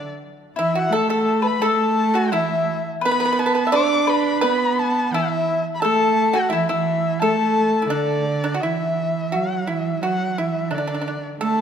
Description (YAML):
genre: chinese traditional, Chinese chamber ensemble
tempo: 86 BPM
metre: 2/4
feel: rubato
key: A zhi mode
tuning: A4 = 440 Hz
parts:
  - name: dark erhu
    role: melody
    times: 0.0-11.6 s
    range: D5 to D6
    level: -23 LUFS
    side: left 2 dB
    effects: none
  - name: dark cello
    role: second line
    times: 0.0-11.6 s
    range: D3 to D4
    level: -23 LUFS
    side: right 5 dB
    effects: none
  - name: mandolin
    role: second line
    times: 0.0-8.2 s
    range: E4 to D5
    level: -24 LUFS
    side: left 7 dB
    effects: none
  - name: pipa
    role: second line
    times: 0.0-11.6 s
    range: D4 to E5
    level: -25 LUFS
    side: right 3 dB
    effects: none
room: moderate concert hall reverb, RT60 2.1 s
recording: none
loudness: -18 LUFS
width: side -8 dB against mid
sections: 0.0-8.6 A section; 8.6-11.6 B section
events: none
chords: none